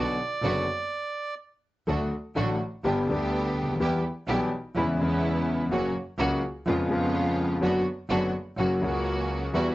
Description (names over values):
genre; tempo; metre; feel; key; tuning
tango; 125 BPM; 4/4; rubato; B minor; A4 = 441 Hz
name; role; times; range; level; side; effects
bandoneon; melody; 0.0-1.3 s; D5; -30 LUFS; right 3 dB; none
warm concert grand piano; accompaniment; 0.0-9.7 s; F#1 to G4; -26 LUFS; left 1 dB; none
clear symphonic string section; stabs; 0.0-9.7 s; G3 to G4; -31 LUFS; right 2 dB; none
rich double bass; bass; 0.0-9.7 s; F#1 to E#2; -32 LUFS; right 1 dB; none
room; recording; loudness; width
moderate studio reverb, RT60 0.5 s; home recording on cassette, nothing above 7.9 kHz; -25 LUFS; side -17 dB against mid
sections
0.0-1.9 A section; 1.9-9.7 B section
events
stop 0.9-1.9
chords
0.0 Bm; 1.9 D; 2.8 G; 3.8 Em; 4.8 C#m7/E; 5.7 F#; 6.7 C#7/E#; 7.6 Bm/F#; 8.6 F#